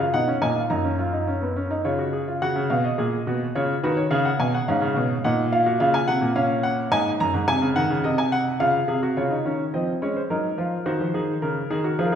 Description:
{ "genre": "classical, baroque-style 3-part fugue for grand piano", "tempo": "106 BPM", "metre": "3/4", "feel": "straight", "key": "F# major", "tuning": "A4 = 439 Hz", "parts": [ { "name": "clear baby grand piano", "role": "solo", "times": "0.0-12.2 s", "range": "F#2 to A#5", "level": "-20 LUFS", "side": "equal", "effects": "none" } ], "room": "wet recital hall reverb, RT60 1.7 s", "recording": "heard from further back in the room", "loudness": "-21 LUFS", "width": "side -8 dB against mid", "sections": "0.0-2.4 A section; 2.4-9.2 B section; 9.2-12.2 A section", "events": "none", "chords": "0.1 G#m7/B; 0.7 F#; 1.8 C#; 2.4 F#; 3.5 C#; 4.1 C#7; 5.2 F#/A#; 5.8 C#; 6.9 G#5; 7.5 G#7/B#; 8.6 C#; 10.3 F#; 10.9 Cm7b5/Eb", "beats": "0.13 | 0.70 1.27 1.84 | 2.42 2.98 3.55 | 4.11 4.68 5.24 | 5.80 6.36 6.92 | 7.48 8.04 8.61 | 9.17 9.74 10.30 | 10.87 11.43 11.99" }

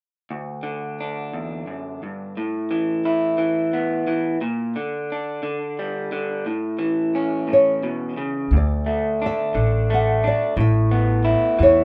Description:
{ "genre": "folk", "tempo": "58 BPM (dotted quarters)", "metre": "6/8", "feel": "straight", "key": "unclear", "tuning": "A4 = 440 Hz", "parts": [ { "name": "electric guitar through a small old amp", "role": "accompaniment", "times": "0.3-11.8 s", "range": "D2 to E4", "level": "-24 LUFS", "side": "equal", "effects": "none" }, { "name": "nylon-string guitar", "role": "melody", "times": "7.5-11.8 s", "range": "C#5 to F#5", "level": "-21 LUFS", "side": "equal", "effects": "none" }, { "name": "upright bass", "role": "bass", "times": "8.5-11.8 s", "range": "A1 to E2", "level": "-22 LUFS", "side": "equal", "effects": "none" } ], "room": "light reverb", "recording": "none", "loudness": "-22 LUFS", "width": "mono", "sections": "0.3-8.5 A section; 8.5-11.8 B section", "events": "none", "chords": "0.3 D; 2.4 Asus2; 4.4 Gm/Bb; 6.4 A; 8.5 D5; 10.6 Asus2", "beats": "| 0.30 1.33 | 2.37 3.39 | 4.41 5.43 | 6.45 7.48 | 8.52 9.55 | 10.58 11.60" }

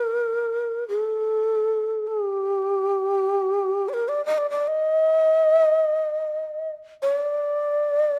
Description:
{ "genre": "japanese traditional, Japanese chamber music", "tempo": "free time", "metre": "none", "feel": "none", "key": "G hirajoshi", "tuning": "A4 = 440 Hz", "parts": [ { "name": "breathy mellow long shakuhachi", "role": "solo", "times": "0.0-8.2 s", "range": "G4 to Eb5", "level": "-23 LUFS", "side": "equal", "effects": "none" } ], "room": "light reverb", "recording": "close, detailed microphones", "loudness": "-23 LUFS", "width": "mono", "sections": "0.0-8.2 A section", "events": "none", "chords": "none", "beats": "free time" }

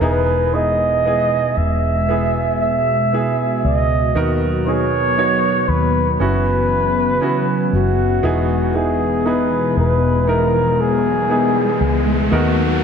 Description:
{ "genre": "pop", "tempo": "59 BPM", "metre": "4/4", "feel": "straight", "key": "unclear", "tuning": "A4 = 440 Hz", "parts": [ { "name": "mellow flugelhorn", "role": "melody", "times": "0.0-12.8 s", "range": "F#4 to E5", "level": "-19 LUFS", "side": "right 1 dB", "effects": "none" }, { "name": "clear grand piano", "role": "accompaniment", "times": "0.0-12.8 s", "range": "D#3 to C#5", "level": "-22 LUFS", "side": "right 3 dB", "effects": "none" }, { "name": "warm analog pad", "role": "sustained chords", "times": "0.0-12.8 s", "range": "B2 to F#4", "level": "-21 LUFS", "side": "left 2 dB", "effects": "chorus" }, { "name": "vintage muted fingered electric bass", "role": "bass", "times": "0.0-12.8 s", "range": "E1 to D#2", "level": "-21 LUFS", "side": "left 1 dB", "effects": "none" }, { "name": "riser", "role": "sound effects", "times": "10.0-12.8 s", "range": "none", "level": "-24 LUFS", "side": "right 1 dB", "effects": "none" } ], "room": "moderate plate reverb, RT60 3.4 s", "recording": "dreamy mix soaked in reverb", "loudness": "-15 LUFS", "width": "side -7 dB against mid", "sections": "0.0-12.8 A section", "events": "riser 10.0-12.8", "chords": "0.0 Emaj7; 4.2 Bmaj7/D#; 6.2 F#7sus4; 8.2 Emaj7; 12.3 Bmaj7/D#", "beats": "| 0.02 1.06 2.10 3.13 | 4.16 5.18 6.20 7.23 | 8.24 9.26 10.28 11.30 | 12.32" }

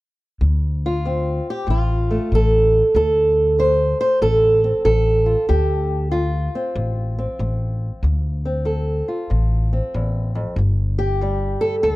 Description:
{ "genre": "acoustic country blues, solo or duo", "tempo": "94 BPM", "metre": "4/4", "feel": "swing 65% on 8ths", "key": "D minor", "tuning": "A4 = 440 Hz", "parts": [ { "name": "fingerpicked old ladder-braced acoustic guitar", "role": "melody", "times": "0.4-12.0 s", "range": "D2 to C5", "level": "-19 LUFS", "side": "right 1 dB", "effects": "none" }, { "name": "upright bass", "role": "bass", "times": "0.4-12.0 s", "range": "G1 to D2", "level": "-20 LUFS", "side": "equal", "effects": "none" } ], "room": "small room ambience", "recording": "dry, close 1970s-style studio recording", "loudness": "-17 LUFS", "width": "side -18 dB against mid", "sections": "0.4-12.0 A section", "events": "none", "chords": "0.4 Dm7; 10.6 N.C.", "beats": "| 0.41 1.05 1.68 2.32 | 2.95 3.59 4.22 4.86 | 5.49 6.13 6.76 7.40 | 8.03 8.67 9.30 9.94 | 10.57 11.21 11.84" }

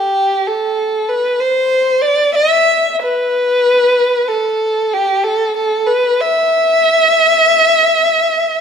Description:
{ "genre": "arabic", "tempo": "free time", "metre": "none", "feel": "none", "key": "E maqam bayati", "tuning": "A4 = 440 Hz", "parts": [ { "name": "dark violin", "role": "solo", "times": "0.0-8.6 s", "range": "G4 to E5", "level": "-11 LUFS", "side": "equal", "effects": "none" } ], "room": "moderate scoring stage reverb, RT60 1.7 s", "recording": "minimal, uncompressed stereo recording", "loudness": "-11 LUFS", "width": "side -7 dB against mid", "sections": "0.0-8.6 A section", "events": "none", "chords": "none", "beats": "free time" }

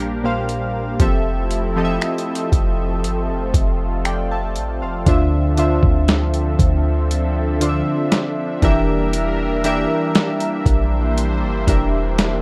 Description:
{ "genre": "contemporary R&B", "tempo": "59 BPM", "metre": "4/4", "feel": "straight", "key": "D minor", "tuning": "A4 = 440 Hz", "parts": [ { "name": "warm analog keys", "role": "accompaniment", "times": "0.0-12.4 s", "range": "Bb2 to A5", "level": "-23 LUFS", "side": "equal", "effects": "chorus" }, { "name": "lush unison pad", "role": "sustained chords", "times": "0.0-12.4 s", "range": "F3 to E5", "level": "-28 LUFS", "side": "equal", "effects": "chorus, phaser, sidechain pumping" }, { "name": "clean 808-style bass", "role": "bass", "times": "0.0-12.4 s", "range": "E1 to D2", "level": "-23 LUFS", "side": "equal", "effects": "none" }, { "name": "dusty soul sampler-style drum kit", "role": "drums", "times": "0.5-12.4 s", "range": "finger snaps, hi-hat, kick drum, snare drum", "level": "-20 LUFS", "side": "equal", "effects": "overdrive" } ], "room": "light reverb", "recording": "none", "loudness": "-19 LUFS", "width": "mono", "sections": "0.0-5.1 A section; 5.1-12.4 B section", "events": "none", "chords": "0.0 Bb6; 1.0 Fmaj7; 5.1 Dm9; 8.6 Em7b5", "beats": "| 1.00 2.01 3.03 4.05 | 5.07 6.08 7.10 8.12 | 9.13 10.15 11.17 12.18" }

